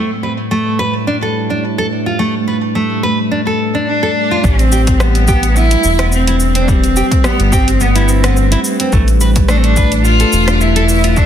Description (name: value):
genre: organic downtempo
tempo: 107 BPM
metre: 4/4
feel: swing 54% on 16ths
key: A minor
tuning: A4 = 440 Hz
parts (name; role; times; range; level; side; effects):
- warbly tape-like pad; sustained chords; 0.0-11.3 s; A2 to B4; -19 LUFS; equal; chorus, built-in reverb, sidechain pumping
- nylon-string guitar; arpeggios; 0.0-11.3 s; G3 to B4; -18 LUFS; right 2 dB; digital delay
- rich cello; melody; 3.9-11.3 s; B3 to F4; -16 LUFS; left 1 dB; digital delay
- round analog bass; bass; 4.4-11.3 s; E1 to A1; -13 LUFS; equal; sidechain pumping
- deep house drum kit; drums; 4.4-11.3 s; hi-hat, rim click, shaker; -21 LUFS; equal; overdrive, low-pass filter on perc, studio reverb, low-pass filter on hats, low-pass filter on snare
- electronic kick drum; drums; 4.4-11.3 s; none; -15 LUFS; equal; overdrive, studio reverb
room: light reverb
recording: dense, heavily limited modern master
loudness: -11 LUFS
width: side -9 dB against mid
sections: 0.0-4.4 A section; 4.4-11.3 B section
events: none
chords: 0.0 Bm7/A; 4.4 Am9; 8.9 Bm7b5